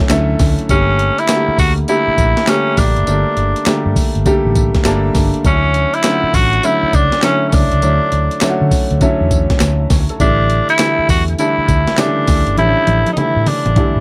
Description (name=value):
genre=R&B, new jack swing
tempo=101 BPM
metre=4/4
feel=swing 64% on 16ths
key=D major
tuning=A4 = 440 Hz
part: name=warm grand piano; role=accompaniment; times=0.0-14.0 s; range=C#3 to E5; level=-20 LUFS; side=equal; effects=none
part: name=vintage muted fingered electric bass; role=bass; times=0.1-14.0 s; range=F#1 to D3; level=-19 LUFS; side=equal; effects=none
part: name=breakbeat sampler-style drum kit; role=drums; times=0.1-13.9 s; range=handclaps, hi-hat, kick drum, snare drum, tambourine, toms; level=-19 LUFS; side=equal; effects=none
part: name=raspy tenor saxophone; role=melody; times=0.7-14.0 s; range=C#4 to F#4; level=-18 LUFS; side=equal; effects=none
room=little or no reverb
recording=none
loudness=-14 LUFS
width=mono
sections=0.0-14.0 A section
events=drum fill 12.6-14.0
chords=0.0 Dmaj9; 0.7 Gmadd9; 5.4 Dmaj9; 10.2 A7sus4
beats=0.10 | 0.69 1.29 1.88 2.48 | 3.07 3.67 4.26 4.85 | 5.45 6.04 6.63 7.23 | 7.82 8.42 9.01 9.61 | 10.20 10.79 11.39 11.98 | 12.57 13.17 13.76